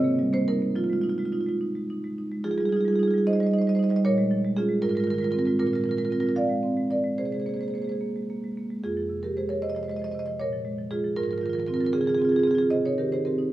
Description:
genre	classical, contemporary piece for solo marimba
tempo	70-79 BPM (dotted quarters)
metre	6/8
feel	rubato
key	F minor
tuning	A4 = 440 Hz
part	marimba with soft mallets	solo	0.0-13.5 s	F2 to F5	-23 LUFS	right 1 dB	none
room	moderate recital hall reverb, RT60 1.7 s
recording	small room ambience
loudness	-23 LUFS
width	side -14 dB against mid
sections	0.0-2.4 A section; 2.4-13.5 B section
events	none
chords	0.0 Cm7; 0.8 Fm7; 2.4 Fm9; 4.0 Bbm7; 4.8 Ab69; 5.6 Bb9; 7.2 Abadd9/C; 8.8 Fm7; 10.4 Bbm7; 11.2 Ab69; 11.9 Dbmaj7; 12.7 Cm7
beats	| 0.75 1.60 | 2.43 3.27 | 4.05 4.82 | 5.59 6.37 | 7.18 8.01 | 8.82 9.62 | 10.39 11.17 | 11.94 12.72

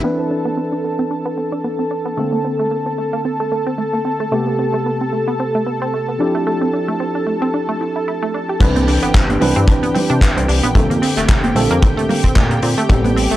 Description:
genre	nu-disco, nu disco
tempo	112 BPM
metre	4/4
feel	swing 56% on 16ths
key	C major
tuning	A4 = 440 Hz
part	barky tine electric piano	accompaniment	0.0-13.4 s	C3 to B4	-21 LUFS	equal	medium stereo tremolo, analog delay
part	lush unison pad	sustained chords	0.0-13.4 s	G4 to A5	-22 LUFS	equal	chorus, sidechain pumping
part	wide unison pluck	arpeggios	0.0-13.4 s	A3 to G4	-22 LUFS	right 2 dB	sidechain pumping, analog delay
part	chorused synth bass	bass	0.0, 8.6-13.4 s	F1 to C3	-19 LUFS	equal	none
part	kick drum	drums	8.6-13.0 s	none	-14 LUFS	equal	none
part	loose indie drum kit	drums	8.6-13.4 s	crash cymbal, handclaps, hi-hat	-24 LUFS	left 2 dB	low-pass filter on hats, low-pass filter on toms, low-pass filter on cymbals, low-pass filter on snare, low-pass filter on room
part	congas	percussion	8.6-13.1 s	none	-22 LUFS	right 3 dB	none
room	little or no reverb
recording	cassette tape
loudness	-15 LUFS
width	side -14 dB against mid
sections	0.0-8.6 A section; 8.6-13.4 B section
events	filter sweep on drum 0.0-8.6; filter sweep on analog synth pad 0.0-8.6; filter sweep on synth arpeggio sound 0.0-8.6; drop 8.6-13.4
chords	0.0 Cmaj9; 2.2 Bbmaj9; 4.3 Am9; 6.2 Dm11; 8.6 Cmaj9; 10.8 Bbmaj9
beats	| 0.04 0.58 1.11 1.65 | 2.18 2.72 3.25 3.79 | 4.33 4.86 5.40 5.93 | 6.47 7.00 7.54 8.08 | 8.61 9.15 9.68 10.22 | 10.75 11.29 11.83 12.36 | 12.90

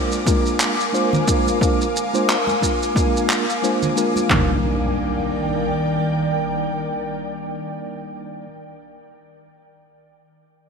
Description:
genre	sunset chillout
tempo	89 BPM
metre	4/4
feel	swing 57% on 16ths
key	Eb major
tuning	A4 = 443 Hz
part	mellow tine electric piano	accompaniment	0.0-8.5 s	G3 to C5	-23 LUFS	equal	slow stereo tremolo, auto-pan, digital delay
part	ethereal airy pad	sustained chords	0.0-7.8 s	Eb3 to D6	-23 LUFS	equal	ensemble chorus, built-in reverb
part	shaker and handclaps	drums	0.1-4.3 s	none	-24 LUFS	equal	gated reverb
part	deep house drum kit	drums	0.3-4.5 s	handclaps, kick drum, toms	-20 LUFS	equal	overdrive, gated reverb
part	congas	percussion	1.1-4.3 s	none	-28 LUFS	right 2 dB	none
part	impact	sound effects	4.3-8.5 s	none	-26 LUFS	left 1 dB	none
room	wet lush hall reverb, RT60 3.0 s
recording	bright 1980s-style digital production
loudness	-18 LUFS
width	side -5 dB against mid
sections	0.0-4.3 A section; 4.3-7.0 B section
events	none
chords	0.0 Bb7; 4.3 Ebmaj7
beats	0.26 0.93 | 1.61 2.28 2.96 3.63 | 4.30 4.98 5.65 6.33

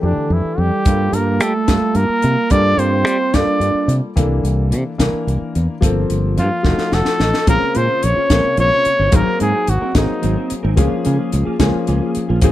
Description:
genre	electric jazz fusion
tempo	73 BPM (dotted quarters)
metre	6/8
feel	straight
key	G dorian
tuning	A4 = 440 Hz
part	warm trumpet	melody	0.0-10.5 s	D4 to D5	-18 LUFS	equal	slapback echo
part	warm concert grand piano	accompaniment	0.0-12.5 s	C3 to Gb5	-22 LUFS	left 3 dB	none
part	fingered electric bass	bass	0.0-12.5 s	F1 to G3	-17 LUFS	equal	none
part	dark bass clarinet	second line	0.1-4.0 s	D3 to D4	-21 LUFS	right 7 dB	slapback echo
part	crisp fusion drum kit	drums	0.9-12.5 s	hi-hat, kick drum, snare drum	-18 LUFS	equal	none
part	mellow electric guitar	stabs	7.5-12.5 s	Gb3 to C5	-24 LUFS	right 1 dB	ensemble chorus
room	small room reverb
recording	none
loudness	-14 LUFS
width	side -14 dB against mid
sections	0.0-7.5 A section; 7.5-12.5 B section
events	drum fill 6.6-7.5; grand piano fill 6.6-7.5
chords	0.0 Fmaj13; 0.9 Gm9; 4.2 C13; 5.8 Gm11; 6.6 F7b9; 7.5 Bbm9; 9.1 Ab9; 10.8 Db6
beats	0.04 | 0.86 1.69 | 2.51 3.34 | 4.17 4.99 | 5.82 6.64 | 7.47 8.30 | 9.12 9.95 | 10.78 11.60 | 12.43

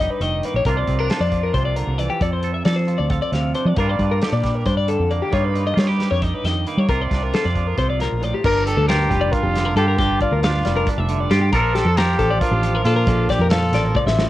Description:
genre	math rock and midwest emo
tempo	270 BPM (eighths)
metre	7/8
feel	straight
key	unclear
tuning	A4 = 440 Hz
part	twangy electric guitar	accompaniment	0.0-14.3 s	F2 to A4	-25 LUFS	right 6 dB	cassette tape
part	twelve-string electric guitar	arpeggios	0.0-14.3 s	G4 to F5	-23 LUFS	left 5 dB	cassette tape
part	fingered electric bass	bass	0.0-14.3 s	F1 to G3	-20 LUFS	equal	none
part	loose indie drum kit	drums	0.2-14.3 s	crash cymbal, hi-hat, kick drum, snare drum, toms	-25 LUFS	equal	cassette tape
part	clear trumpet	melody	8.5-14.0 s	F4 to Bb4	-23 LUFS	equal	cassette tape
room	small room ambience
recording	home recording on cassette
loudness	-17 LUFS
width	side -15 dB against mid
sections	0.0-8.4 A section; 8.4-14.3 B section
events	drum fill 14.0-14.3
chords	0.0 G7alt; 0.7 C9sus4; 2.2 F6; 3.8 Gm9; 5.3 G7alt; 6.9 C9sus4; 8.4 Gm7; 11.5 Bbmaj7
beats	0.21 0.43 | 0.65 0.88 1.10 1.32 1.54 1.77 1.99 | 2.21 2.44 2.66 2.88 3.10 3.33 3.55 | 3.77 4.00 4.22 4.44 4.66 4.89 5.11 | 5.33 5.55 5.78 6.00 6.22 6.44 6.67 | 6.89 7.11 7.33 7.55 7.78 8.00 8.22 | 8.44 8.66 8.88 9.11 9.33 9.55 9.77 | 9.99 10.21 10.43 10.65 10.87 11.09 11.31 | 11.53 11.75 11.97 12.19 12.41 12.63 12.85 | 13.07 13.29 13.51 13.73 13.95 14.17

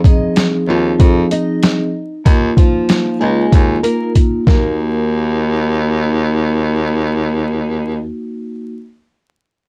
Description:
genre	hip hop, boom-bap hip-hop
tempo	95 BPM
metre	4/4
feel	swing 57% on 16ths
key	unclear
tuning	A4 = 439 Hz
part	flamenco guitar	melody	0.0-6.6 s	F3 to Eb5	-23 LUFS	equal	high-pass filter, low-pass filter
part	vibraphone with soft mallets	accompaniment	0.0-8.7 s	F3 to Ab4	-21 LUFS	equal	cassette tape, high-pass filter, low-pass filter
part	boom bap sampler-style drum kit	drums	0.0-4.6 s	hi-hat, kick drum, snare drum	-14 LUFS	equal	overdrive
part	warm baritone saxophone	bass	0.7-8.1 s	Db2 to F2	-20 LUFS	equal	none
room	little or no reverb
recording	dark, warm production, vinyl crackle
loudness	-15 LUFS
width	mono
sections	0.0-4.8 A section; 4.8-7.3 B section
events	drum fill 4.2-4.8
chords	0.0 Fm7; 2.3 Ebsus2; 4.5 Ebm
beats	0.36 1.00 1.63 | 2.26 2.89 3.52 4.15 | 4.79 5.42 6.05 6.68

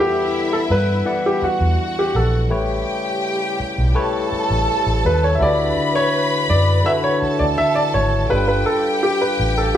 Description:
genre	soul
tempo	83 BPM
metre	4/4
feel	straight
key	E minor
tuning	A4 = 441 Hz
part	warm grand piano	melody	0.0-9.8 s	F#4 to E5	-19 LUFS	equal	none
part	warm studio string section	second line	0.0-9.8 s	E4 to B5	-23 LUFS	equal	none
part	barky tine electric piano	accompaniment	0.0-9.8 s	D3 to F#5	-24 LUFS	left 3 dB	none
part	warm French horn section	sustained chords	0.0-9.8 s	C#3 to F4	-32 LUFS	equal	none
part	vibraphone with soft mallets	texture	0.0-5.9 s	E4 to B4	-29 LUFS	equal	none
part	vintage muted fingered electric bass	bass	0.7-9.7 s	G1 to G2	-20 LUFS	equal	none
room	moderate large studio reverb, RT60 1.1 s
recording	band playing live in one room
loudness	-16 LUFS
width	side -10 dB against mid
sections	0.0-9.8 A section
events	grand piano solo 0.0-9.8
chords	0.0 Em9; 2.5 A7; 5.4 Dadd9; 8.3 G7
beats	0.33 1.05 1.78 | 2.50 3.23 3.95 4.68 | 5.40 6.12 6.85 7.57 | 8.30 9.02 9.75

